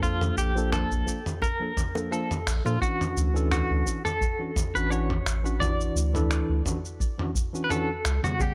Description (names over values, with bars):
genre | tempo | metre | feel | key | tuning
sunset chillout | 86 BPM | 4/4 | swing 54% on 16ths | D major | A4 = 436 Hz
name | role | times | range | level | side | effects
semi-hollow electric guitar | melody | 0.0-8.5 s | F4 to D5 | -33 LUFS | equal | tremolo, delay
tine electric piano | accompaniment | 0.0-8.5 s | C#3 to F#5 | -34 LUFS | equal | medium tremolo, delay
round analog bass | bass | 0.0-8.2 s | A1 to Bb2 | -29 LUFS | equal | none
dusty soul sampler-style drum kit | drums | 0.0-8.5 s | finger snaps, shaker, toms | -34 LUFS | equal | none
electronic kick drum | drums | 0.0-8.5 s | none | -31 LUFS | equal | overdrive
bongos | percussion | 0.2-2.8 s | none | -38 LUFS | equal | none
room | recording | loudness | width
digital ambience | none | -27 LUFS | mono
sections
0.0-2.8 A section; 2.8-8.5 B section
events
band accent 2.5-2.8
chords
0.0 Bbmaj7; 2.8 Dmaj9